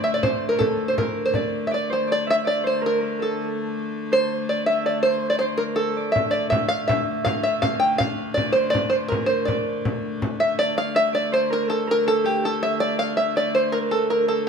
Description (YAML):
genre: medieval dance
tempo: 162 BPM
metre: 3/4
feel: straight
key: D minor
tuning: A4 = 440 Hz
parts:
  - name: open-back banjo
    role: melody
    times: 0.0-14.5 s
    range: G4 to G5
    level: -22 LUFS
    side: equal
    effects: none
  - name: concert harp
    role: second line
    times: 0.0-14.5 s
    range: G4 to F5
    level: -27 LUFS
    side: right 3 dB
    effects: none
  - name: rich hurdy-gurdy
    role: drone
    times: 0.0-14.5 s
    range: D3 to A3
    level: -30 LUFS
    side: left 4 dB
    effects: none
  - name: frame drum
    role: percussion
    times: 0.2-1.6, 6.2-10.5 s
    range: none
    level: -28 LUFS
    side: left 1 dB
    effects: none
room: moderate large studio reverb, RT60 1.1 s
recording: band playing live in one room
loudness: -20 LUFS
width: side -6 dB against mid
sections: 0.0-1.7 A section; 1.7-10.6 A section; 10.6-14.5 B section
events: none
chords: none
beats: 0.23 | 0.59 0.97 1.34 | 1.71 2.08 2.45 | 2.82 3.19 3.56 | 3.93 4.30 4.67 | 5.04 5.41 5.78 | 6.15 6.52 6.89 | 7.26 7.63 8.00 | 8.37 8.74 9.11 | 9.48 9.85 10.22 | 10.59 10.96 11.33 | 11.70 12.07 12.44 | 12.81 13.18 13.55 | 13.91 14.29